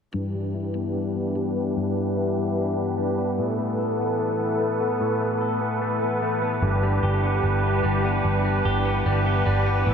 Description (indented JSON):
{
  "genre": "dream pop",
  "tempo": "74 BPM",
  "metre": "4/4",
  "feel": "straight",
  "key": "unclear",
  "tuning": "A4 = 439 Hz",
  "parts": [
    { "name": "musette accordion", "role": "sustained chords", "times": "0.1-9.9 s", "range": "E3 to B4", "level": "-26 LUFS", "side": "right 2 dB", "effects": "low-pass filter" },
    { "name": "direct-recorded clean electric guitar", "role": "arpeggios", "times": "0.1-9.9 s", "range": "G2 to A4", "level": "-25 LUFS", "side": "left 4 dB", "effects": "wide subtle chorus, low-pass filter, ping-pong delay" },
    { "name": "vintage muted picked electric bass", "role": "bass", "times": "6.6-9.9 s", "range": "G1 to A1", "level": "-23 LUFS", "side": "right 1 dB", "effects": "none" }
  ],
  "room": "wet huge ambient reverb, RT60 8.8 s",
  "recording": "dreamy mix soaked in reverb",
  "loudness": "-21 LUFS",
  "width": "side -7 dB against mid",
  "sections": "0.1-9.9 A section",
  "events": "filter sweep 0.1-9.9",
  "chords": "0.1 G6; 3.4 Asus2; 6.6 G6",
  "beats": "| 0.14 0.95 1.76 2.58 | 3.39 4.20 5.01 5.82 | 6.63 7.44 8.25 9.06 | 9.87"
}